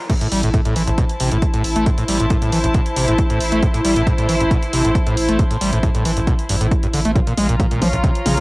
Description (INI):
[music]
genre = driving peak-time techno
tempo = 136 BPM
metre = 4/4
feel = straight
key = A minor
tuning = A4 = 437 Hz
[part]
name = warm studio string section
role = texture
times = 0.0-8.4 s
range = E4 to Bb5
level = -22 LUFS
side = equal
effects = sidechain pumping, cassette tape
[part]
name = screaming distorted acid line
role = riff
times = 0.1-8.4 s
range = A1 to A3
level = -20 LUFS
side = equal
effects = distortion, lush chorus, sidechain pumping, cassette tape, analog delay
[part]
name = electronic kick drum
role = drums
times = 0.1-8.1 s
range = none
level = -17 LUFS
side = equal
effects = overdrive, cassette tape
[part]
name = punchy analog drum machine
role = drums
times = 0.1-8.4 s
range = crash cymbal, hi-hat, toms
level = -25 LUFS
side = equal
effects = overdrive, cassette tape
[part]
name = saturated sub bass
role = bass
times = 0.3-8.4 s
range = A1 to Bb1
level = -23 LUFS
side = equal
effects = tube saturation, sidechain pumping, low-pass filter
[sound]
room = moderate studio reverb, RT60 0.6 s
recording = home recording on cassette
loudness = -15 LUFS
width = side -22 dB against mid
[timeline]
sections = 0.0-8.4 A section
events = none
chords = 0.1 Am; 7.2 Bbm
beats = | 0.10 0.54 0.98 1.42 | 1.86 2.30 2.75 3.19 | 3.63 4.07 4.51 4.95 | 5.39 5.83 6.27 6.71 | 7.16 7.60 8.04